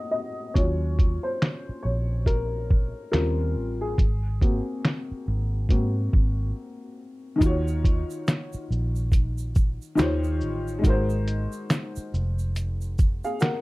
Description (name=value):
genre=lo-fi hip hop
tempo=70 BPM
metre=4/4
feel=swing 62% on 16ths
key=Eb dorian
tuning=A4 = 441 Hz
part: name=dark upright piano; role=accompaniment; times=0.0-13.6 s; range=Eb3 to Gb5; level=-29 LUFS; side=left 2 dB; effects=cassette tape, low-pass filter
part: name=vintage muted fingered electric bass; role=bass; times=0.6-13.2 s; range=F1 to Ab2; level=-26 LUFS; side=equal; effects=none
part: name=lo-fi sampler-style drum kit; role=drums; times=0.6-13.6 s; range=finger snaps, hi-hat, kick drum, shaker, snare drum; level=-22 LUFS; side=equal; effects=none
part: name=tube shaker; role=percussion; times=7.4-13.6 s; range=none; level=-50 LUFS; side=right 9 dB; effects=none
room=light reverb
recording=dark, warm production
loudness=-23 LUFS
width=side -20 dB against mid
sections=0.0-7.4 A section; 7.4-13.6 B section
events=upright piano solo 0.0-7.4; break 6.6-7.4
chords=0.0 Ab7; 0.6 Ebm9; 3.1 Eb13; 4.0 Ab7; 7.4 Ebm9; 10.0 Eb13; 10.8 Ab7